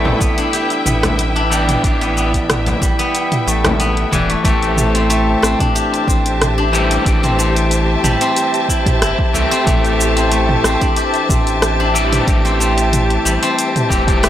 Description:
organic downtempo; 92 BPM; 4/4; straight; A minor; A4 = 440 Hz
electric guitar at the edge of break-up; accompaniment; 0.0-14.3 s; E3 to G4; -22 LUFS; left 1 dB; spring reverb, sidechain pumping, analog delay
clear studio string section; sustained chords; 0.0-14.3 s; E4 to A5; -21 LUFS; left 1 dB; sidechain pumping
steel-string zither; arpeggios; 0.0-14.3 s; E3 to G4; -19 LUFS; left 1 dB; analog delay
round analog bass; bass; 0.0-14.3 s; E1 to C2; -19 LUFS; equal; sidechain pumping
deep house drum kit; drums; 0.0-14.3 s; cabasa, hi-hat, rim click, toms; -20 LUFS; equal; small room ambience
frame drum; percussion; 0.1-3.8 s; -22 LUFS; left 1 dB
electronic kick drum; drums; 0.2-14.2 s; -18 LUFS; equal; small room ambience
drifting glass-harmonics texture; texture; 5.7-14.3 s; G4 to G5; -26 LUFS; left 2 dB; chorus, built-in reverb
little or no reverb; dry, gritty hardware recording; -13 LUFS; side -11 dB against mid
0.0-4.5 A section; 4.5-14.3 B section
0.0 Em7; 4.5 Am7

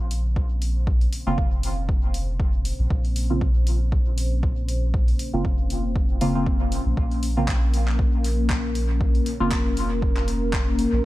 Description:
dub techno; 118 BPM; 4/4; swing 56% on 16ths; Bb minor; A4 = 440 Hz
dark analog pad; sustained chords; 0.1-11.1 s; Bb3 to C5; -30 LUFS; left 2 dB; chorus, sidechain pumping
soft dub sub bass; bass; 0.0-11.0 s; F1 to Bb1; -24 LUFS; equal; sidechain pumping
deep house drum kit; drums; 0.1-10.9 s; handclaps, hi-hat; -34 LUFS; equal; studio reverb, dub echo
electronic kick drum; drums; 0.4-10.6 s; -24 LUFS; equal; studio reverb
deep mellow chord stab; stabs; 1.3-9.5 s; Db3 to F4; -28 LUFS; right 1 dB; chorus, phaser, sidechain pumping, dub echo
digital ambience; dark, warm production; -20 LUFS; side -17 dB against mid
0.0-11.1 A section
0.0 Bbmadd9

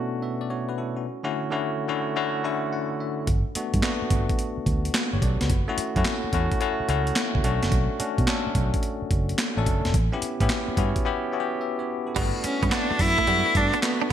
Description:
R&B, new jack swing; 108 BPM; 4/4; swing 67% on 16ths; A4 = 442 Hz
bell-like tine electric piano; accompaniment; 0.0-14.1 s; B2 to A5; -27 LUFS; left 2 dB; medium stereo tremolo
vintage muted fingered electric bass; bass; 3.3-14.1 s; E1 to B2; -26 LUFS; right 1 dB
breakbeat sampler-style drum kit; drums; 3.3-14.1 s; crash cymbal, handclaps, hi-hat, kick drum, snare drum; -25 LUFS; right 1 dB; gated reverb
direct-recorded clean electric guitar; riff; 12.2-14.1 s; G3 to D4; -31 LUFS; right 9 dB; wide subtle chorus
rich cello; melody; 12.4-14.1 s; B3 to E4; -22 LUFS; equal; ping-pong delay
moderate plate reverb, RT60 1.4 s, digital ambience; bright 1980s-style digital production; -22 LUFS; side -10 dB against mid
0.0-12.2 A section; 12.2-14.1 B section
tine electric piano fill 2.2-3.3; break 11.1-12.2
0.0 Bm7; 1.1 Dmaj7; 3.3 Gmaj7; 5.5 F#m7; 7.4 Bm7; 9.9 A7; 12.2 Gmaj7

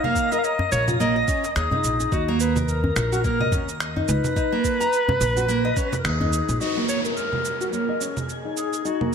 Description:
organic downtempo; 107 BPM; 4/4; swing 57% on 16ths; Eb minor; A4 = 442 Hz
warm clarinet; melody; 0.0-9.1 s; Gb4 to F5; -25 LUFS; equal; digital delay
nylon-string guitar; arpeggios; 0.0-9.1 s; Bb3 to A#5; -26 LUFS; equal; low-pass filter, ping-pong delay
electronic congas, cabasa and finger snaps; drums; 0.0-9.1 s; -29 LUFS; right 3 dB
twinkling granular texture; texture; 0.0-9.1 s; Ab4 to Bb5; -37 LUFS; right 1 dB; built-in reverb, lush chorus
electronic kick drum; drums; 0.2-5.9 s; -26 LUFS; equal
djembe; percussion; 0.3-6.6 s; -30 LUFS; left 1 dB
upright bass; bass; 0.7-6.6 s; Bb1 to Eb2; -25 LUFS; equal; sidechain pumping
downlifter; sound effects; 6.6-9.1 s; -31 LUFS; right 1 dB
moderate plate reverb, RT60 2.4 s; bright 1980s-style digital production; -20 LUFS; side -6 dB against mid
0.0-6.6 A section; 6.6-9.1 B section
band accent 6.0
0.0 Dbsus2 (rootless); 2.1 Bmaj7

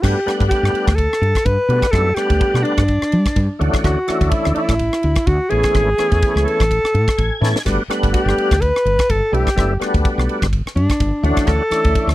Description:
electric jazz fusion; 126 BPM; 4/4; swing 55% on 16ths; G lydian; A4 = 440 Hz
mellow alto saxophone; melody; 0.0-12.1 s; D4 to B4; -18 LUFS; equal; slapback echo
tonewheel organ; accompaniment; 0.0-12.1 s; E3 to G#5; -21 LUFS; equal; slow rotary speaker, chorus vibrato
woody fretless electric bass; bass; 0.0-12.1 s; F#1 to G3; -18 LUFS; equal
crisp fusion drum kit; drums; 0.0-12.1 s; crash cymbal, kick drum, ride cymbal, rim click, snare drum; -20 LUFS; equal
little or no reverb; dry, close 1970s-style studio recording; -14 LUFS; side -16 dB against mid
0.0-12.1 A section
tonewheel organ fill 6.9-7.7; drum fill 7.4
0.0 Gmaj9; 3.6 Dmaj9; 5.5 Amaj9; 7.7 Gmaj9; 11.2 Dmaj9

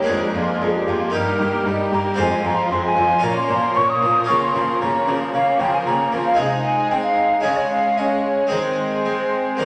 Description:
classical, baroque-style concerto movement with solo episodes; 114 BPM; 4/4; straight; Ab major; A4 = 441 Hz
mellow hollow silver concert flute; melody; 0.0-9.7 s; G4 to Eb6; -22 LUFS; equal
rich symphonic violin section; melody; 0.0-9.7 s; G4 to Db5; -34 LUFS; equal
rich chamber violin section; second line; 0.0-9.7 s; Bb3 to G4; -28 LUFS; equal
harpsichord; accompaniment; 0.0-9.7 s; F2 to C5; -27 LUFS; equal
rich studio viola section; accompaniment; 0.0-9.7 s; F3 to Bb3; -29 LUFS; equal
rich studio cello section; bass; 0.1-9.7 s; F2 to Db4; -32 LUFS; equal
wet recital hall reverb, RT60 1.5 s; -19 LUFS; mono
0.0-9.7 A section
0.1 Bb7/F; 1.1 Eb/G; 2.2 Fm; 3.2 Bbm; 4.3 Bbm/Db; 6.4 Ab/C; 7.4 Db5; 8.5 Ab/Eb

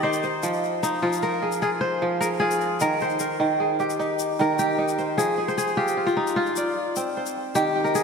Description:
west african traditional, West African string and xylophone music; 101 BPM (dotted quarters); 12/8; straight; F dorian; A4 = 439 Hz
kora; melody; 0.0-8.0 s; Eb4 to Eb5; -24 LUFS; left 2 dB; tape echo
kora; arpeggios; 0.0-8.0 s; Eb3 to D5; -24 LUFS; right 2 dB; tape echo
egg shaker; percussion; 0.1-8.0 s; -37 LUFS; left 10 dB
wet lush hall reverb, RT60 2.5 s; dreamy mix soaked in reverb; -22 LUFS; side -5 dB against mid
0.0-5.2 A section; 5.2-8.0 B section
kora solo 0.0-5.2
0.4 Fm; 2.8 Eb; 5.2 Fm

